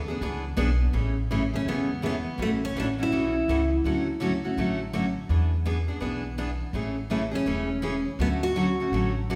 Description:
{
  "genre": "acoustic string swing (jazz manouche)",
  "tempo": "166 BPM",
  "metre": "4/4",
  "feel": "swing 62% on 8ths",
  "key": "A major",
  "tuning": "A4 = 438 Hz",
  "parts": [
    { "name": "upright bass", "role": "bass", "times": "0.0-9.4 s", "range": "E1 to E2", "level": "-31 LUFS", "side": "equal", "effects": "none" },
    { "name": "picked steel-string acoustic guitar", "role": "accompaniment", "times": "0.1-9.4 s", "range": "C#3 to G#4", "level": "-30 LUFS", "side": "equal", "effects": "none" },
    { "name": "picked steel-string acoustic guitar", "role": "melody", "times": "1.6-3.7, 7.4-9.1 s", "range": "A3 to F#4", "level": "-31 LUFS", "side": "equal", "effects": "none" }
  ],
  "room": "wet recital hall reverb, RT60 1.6 s",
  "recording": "recorded in a church or concert hall",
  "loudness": "-27 LUFS",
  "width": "mono",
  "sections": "0.9-9.4 A section",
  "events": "none",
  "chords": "0.0 E7; 0.9 Amaj7; 2.4 F#m7/A; 3.8 Dmaj7; 5.3 E7; 6.7 Amaj7; 8.2 Dmaj7"
}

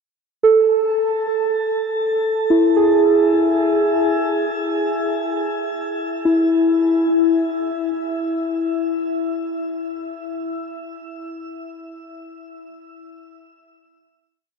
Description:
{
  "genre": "ambient",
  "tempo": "free time",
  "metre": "none",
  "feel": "none",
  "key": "unclear",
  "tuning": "A4 = 440 Hz",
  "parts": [
    { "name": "muted felt-like synth keys", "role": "solo", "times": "0.4-12.1 s", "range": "E4 to A4", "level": "-17 LUFS", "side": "equal", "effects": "chorus, diffuse ambient delay" }
  ],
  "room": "wet shimmer reverb, RT60 8.7 s",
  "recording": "dark, warm production",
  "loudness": "-17 LUFS",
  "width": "side -5 dB against mid",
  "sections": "0.0-6.3 A section; 6.3-9.6 final note",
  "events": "none",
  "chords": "0.0 A5; 2.9 E; 6.3 N.C."
}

